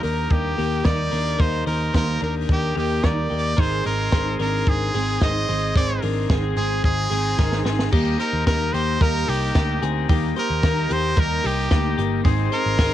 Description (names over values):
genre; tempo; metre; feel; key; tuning
jangly indie pop; 110 BPM; 4/4; straight; Eb major; A4 = 440 Hz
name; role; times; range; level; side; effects
brilliant trumpet; melody; 0.0-12.9 s; G4 to Eb5; -26 LUFS; right 2 dB; cassette tape
combo organ; accompaniment; 0.0-12.9 s; Bb3 to C5; -31 LUFS; left 10 dB; cassette tape
picked steel-string acoustic guitar; accompaniment; 0.0-12.9 s; Ab2 to Bb4; -29 LUFS; right 10 dB; cassette tape
twelve-string electric guitar; arpeggios; 0.0-12.9 s; Bb3 to C5; -28 LUFS; left 10 dB; cassette tape
vintage muted picked electric bass; bass; 0.0-12.9 s; G1 to Eb2; -25 LUFS; equal; none
compact cocktail drum kit; drums; 0.0-12.9 s; crash cymbal, hi-hat, kick drum, snare drum; -22 LUFS; equal; cassette tape
room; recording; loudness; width
little or no reverb; home recording on cassette; -19 LUFS; side -12 dB against mid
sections
0.0-7.9 A section; 7.9-12.9 B section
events
drum fill 7.4-7.9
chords
0.0 Eb; 3.6 Ab; 7.9 Eb; 12.3 Ab